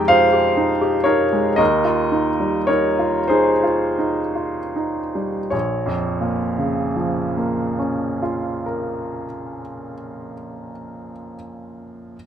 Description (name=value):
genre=classical, impressionist solo piano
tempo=24-45 BPM (dotted quarters)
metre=6/8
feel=rubato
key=Bb dorian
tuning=A4 = 440 Hz
part: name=clear baby grand piano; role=solo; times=0.0-12.2 s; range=Bb1 to G5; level=-18 LUFS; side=equal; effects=none
room=light reverb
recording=none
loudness=-18 LUFS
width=side -9 dB against mid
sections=0.0-5.5 A section; 5.5-9.9 B section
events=slowing down 0.0-5.5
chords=0.0 Fm9; 1.6 Ebadd9; 5.5 Bbm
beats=0.12 | 1.59 3.30 | 5.52 7.70